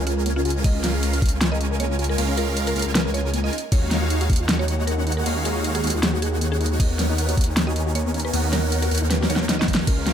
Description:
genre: future bass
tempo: 156 BPM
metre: 4/4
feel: swing 54% on 16ths, half-time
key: unclear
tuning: A4 = 440 Hz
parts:
  - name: soft round pluck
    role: arpeggios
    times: 0.0-10.1 s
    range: Bb3 to Bb4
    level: -32 LUFS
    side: left 3 dB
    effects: chorus, sidechain pumping, dub echo
  - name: supersaw chords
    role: riff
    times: 0.0-10.1 s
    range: Ab3 to Ab5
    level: -27 LUFS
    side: right 1 dB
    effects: phaser, sidechain pumping
  - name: wide detuned saw bass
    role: bass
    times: 0.0-10.1 s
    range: Db2 to Eb2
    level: -23 LUFS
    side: equal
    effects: chorus, sidechain pumping
  - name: mallet-like synth pluck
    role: melody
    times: 0.1-10.0 s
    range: F4 to Eb5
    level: -31 LUFS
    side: right 1 dB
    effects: chorus, sidechain pumping, dub echo
  - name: pop drum kit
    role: drums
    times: 0.1-10.1 s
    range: crash cymbal, hi-hat, snare drum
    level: -25 LUFS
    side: equal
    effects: overdrive
  - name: electronic kick drum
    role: drums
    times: 0.6-1.3, 3.7-4.4, 6.8-10.0 s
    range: none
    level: -20 LUFS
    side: equal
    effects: none
room: digital ambience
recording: none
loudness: -19 LUFS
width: side -9 dB against mid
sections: 0.0-10.1 A section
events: drum fill 9.1-9.9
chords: 0.0 Db6; 3.5 Ebm11; 6.8 Cbmaj9/Eb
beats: 0.26 | 0.64 1.03 1.41 1.80 | 2.18 2.57 2.95 3.33 | 3.72 4.10 4.49 4.87 | 5.26 5.64 6.03 6.41 | 6.80 7.18 7.57 7.95 | 8.34 8.72 9.10 9.49 | 9.87

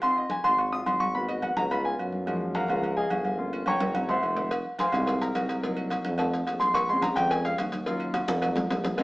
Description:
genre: Afro-Cuban jazz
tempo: 215 BPM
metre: 4/4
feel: straight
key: unclear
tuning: A4 = 437 Hz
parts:
  - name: warm upright piano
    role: accompaniment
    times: 0.0-9.0 s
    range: F3 to Eb6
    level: -27 LUFS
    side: equal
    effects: none
  - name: agogo bells and timbales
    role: percussion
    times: 0.0-9.0 s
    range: none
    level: -32 LUFS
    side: right 1 dB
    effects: none
  - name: congas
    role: percussion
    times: 0.0-9.0 s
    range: none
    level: -38 LUFS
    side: equal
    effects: none
  - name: warm tuba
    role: bass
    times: 0.4-9.0 s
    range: F1 to Gb2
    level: -32 LUFS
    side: equal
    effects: none
  - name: cowbell and bongos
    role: percussion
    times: 4.5-9.0 s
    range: none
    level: -34 LUFS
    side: left 1 dB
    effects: none
room: wet studio reverb, RT60 1.0 s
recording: band playing live in one room, small speaker sound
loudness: -24 LUFS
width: side -21 dB against mid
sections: 0.0-9.0 A section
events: upright piano solo 0.0-9.0; drum fill 3.7-4.5, 8.1-9.0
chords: 0.0 Ab6; 1.1 Abm7; 1.7 Db9; 2.3 Gbmaj13; 3.4 Gm7b5; 4.0 Gb7#11; 4.5 Fm7; 5.6 Cm7b5; 6.2 F7; 6.7 Bbm9; 7.9 Ebm7; 8.4 F7b9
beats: | 0.03 0.31 0.59 0.87 | 1.15 1.43 1.71 1.99 | 2.27 2.55 2.83 3.11 | 3.39 3.67 3.95 4.23 | 4.51 4.79 5.07 5.35 | 5.63 5.91 6.19 6.47 | 6.75 7.03 7.31 7.58 | 7.87 8.14 8.42 8.70 | 8.98

